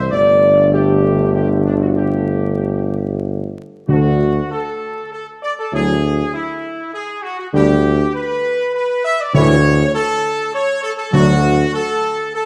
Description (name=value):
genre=classical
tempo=99 BPM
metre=3/4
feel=straight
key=D major from 3.9 s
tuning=A4 = 440 Hz
part: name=clear trumpet section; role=melody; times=0.0-12.5 s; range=D4 to E5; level=-22 LUFS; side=equal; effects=none
part: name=dark French horn section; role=sustained chords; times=0.0-11.3 s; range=A3 to D5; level=-21 LUFS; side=equal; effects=none
part: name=warm trombone section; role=sustained chords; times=0.0-11.3 s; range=A2 to A3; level=-24 LUFS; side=equal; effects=none
part: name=warm tuba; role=bass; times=0.0-11.6 s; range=G1 to D2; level=-19 LUFS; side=equal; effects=none
part: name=timpani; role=percussion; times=3.9-4.8, 9.3-12.0 s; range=D3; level=-21 LUFS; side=equal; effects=none
room=wet scoring stage reverb, RT60 1.6 s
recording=dark, warm production, vinyl crackle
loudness=-16 LUFS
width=mono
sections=0.0-3.9 A section; 3.9-12.5 B section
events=none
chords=0.1 Gsus2; 3.9 D; 5.7 Eadd9/D; 7.5 G/D; 9.3 A/D; 11.1 D